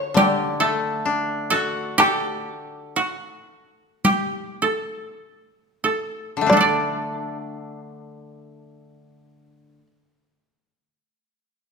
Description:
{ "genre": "japanese traditional, Japanese chamber music", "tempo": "45-70 BPM", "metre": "4/4", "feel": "rubato", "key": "D ryukyu", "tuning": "A4 = 440 Hz", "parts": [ { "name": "shamisen", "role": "melody", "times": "0.0-9.9 s", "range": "C#5 to D5", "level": "-24 LUFS", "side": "right 2 dB", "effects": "none" }, { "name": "koto", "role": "second line", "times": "0.0-10.0 s", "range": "D4 to D5", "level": "-21 LUFS", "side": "right 2 dB", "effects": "none" }, { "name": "koto", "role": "accompaniment", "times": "0.0-9.9 s", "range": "D3 to A4", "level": "-24 LUFS", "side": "left 3 dB", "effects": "none" }, { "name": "solo taiko drums", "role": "percussion", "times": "0.2-7.1 s", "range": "none", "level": "-24 LUFS", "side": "left 1 dB", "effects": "none" } ], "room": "moderate recital hall reverb, RT60 1.4 s", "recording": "none", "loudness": "-20 LUFS", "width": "side -5 dB against mid", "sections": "0.0-6.5 A section; 6.5-11.7 B section", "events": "slowing down 0.0-6.5", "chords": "none", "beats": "0.17 1.06 | 1.98 2.96 4.02 5.20 | 6.49 7.81 9.10" }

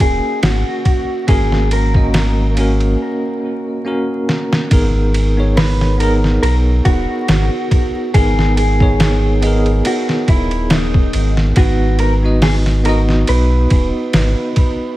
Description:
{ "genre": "trip hop", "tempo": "70 BPM", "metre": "4/4", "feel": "swing 55% on 16ths", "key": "G# minor", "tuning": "A4 = 440 Hz", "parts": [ { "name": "mellow electric guitar", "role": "melody", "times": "0.0-15.0 s", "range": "D#4 to B4", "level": "-22 LUFS", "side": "equal", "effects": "dub echo" }, { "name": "bell-like tine electric piano", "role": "accompaniment", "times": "0.0-15.0 s", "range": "A#3 to D#5", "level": "-19 LUFS", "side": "equal", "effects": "tremolo, tape echo" }, { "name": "warm sub bass", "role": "bass", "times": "0.0-14.3 s", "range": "D#1 to B1", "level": "-15 LUFS", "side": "equal", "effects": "tube saturation" }, { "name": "trip hop sampler-style drum kit", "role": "drums", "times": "0.0-14.8 s", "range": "hi-hat, kick drum, ride cymbal, snare drum", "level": "-16 LUFS", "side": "equal", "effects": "none" } ], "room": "little or no reverb", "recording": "vinyl crackle", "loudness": "-12 LUFS", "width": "side -16 dB against mid", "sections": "0.0-4.7 A section; 4.7-15.0 B section", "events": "break 3.0-4.7; drum fill 4.3-4.7", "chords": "0.0 F#; 4.7 G#madd9; 11.6 B", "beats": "0.42 | 1.28 2.14 3.00 3.85 | 4.71 5.57 6.42 7.28 | 8.14 9.00 9.85 10.71 | 11.57 12.43 13.28 14.14" }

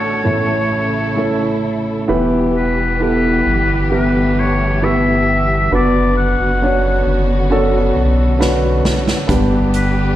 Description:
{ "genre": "pop ballad", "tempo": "67 BPM", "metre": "4/4", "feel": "straight", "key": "unclear", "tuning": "A4 = 440 Hz", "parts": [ { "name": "warm oboe", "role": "melody", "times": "0.0-10.2 s", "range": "B4 to F#5", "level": "-19 LUFS", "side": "left 1 dB", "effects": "slapback echo, tape echo" }, { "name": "warm grand piano", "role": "accompaniment", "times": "0.0-10.2 s", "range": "A1 to C#5", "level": "-16 LUFS", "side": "right 1 dB", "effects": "slapback echo" }, { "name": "dark studio string section", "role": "sustained chords", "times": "0.0-10.2 s", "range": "A2 to A4", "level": "-22 LUFS", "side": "left 2 dB", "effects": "none" }, { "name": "warm sub bass", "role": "bass", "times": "2.1-10.2 s", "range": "E1 to B1", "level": "-18 LUFS", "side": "equal", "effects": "none" }, { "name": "natural country drum kit", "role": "drums", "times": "8.4-9.9 s", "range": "hi-hat, kick drum, snare drum", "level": "-19 LUFS", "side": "equal", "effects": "none" } ], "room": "small room ambience", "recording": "live gig heard through the venue's PA, recital hall reverb", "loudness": "-13 LUFS", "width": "side -13 dB against mid", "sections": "0.0-2.1 A section; 2.1-10.2 B section", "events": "drum fill 8.4-9.3", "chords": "0.3 A; 2.1 Em; 5.7 Bmadd9/F#; 9.3 G", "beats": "0.25 1.17 | 2.10 3.01 3.92 4.83 | 5.72 6.62 7.51 8.40 | 9.30" }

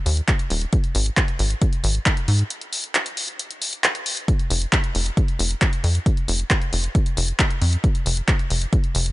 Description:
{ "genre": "uplifting trance", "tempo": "135 BPM", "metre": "4/4", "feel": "straight", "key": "F minor", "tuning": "A4 = 438 Hz", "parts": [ { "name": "tight sequencer bass", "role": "bass", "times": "0.1-9.1 s", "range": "Eb1 to Ab2", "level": "-20 LUFS", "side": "equal", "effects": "sidechain pumping" }, { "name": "punchy analog drum machine", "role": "drums", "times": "0.1-9.1 s", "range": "handclaps, hi-hat", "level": "-23 LUFS", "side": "equal", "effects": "overdrive" }, { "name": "electronic kick drum", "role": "drums", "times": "0.3-8.8 s", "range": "none", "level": "-20 LUFS", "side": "equal", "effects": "overdrive" } ], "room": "little or no reverb", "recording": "nothing above 10.7 kHz", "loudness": "-19 LUFS", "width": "side -19 dB against mid", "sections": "0.0-9.1 A section", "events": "break 2.5-4.3", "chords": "none", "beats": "0.28 | 0.73 1.17 1.62 2.06 | 2.50 2.95 3.39 3.84 | 4.28 4.73 5.17 5.62 | 6.06 6.50 6.95 7.39 | 7.84 8.28 8.73" }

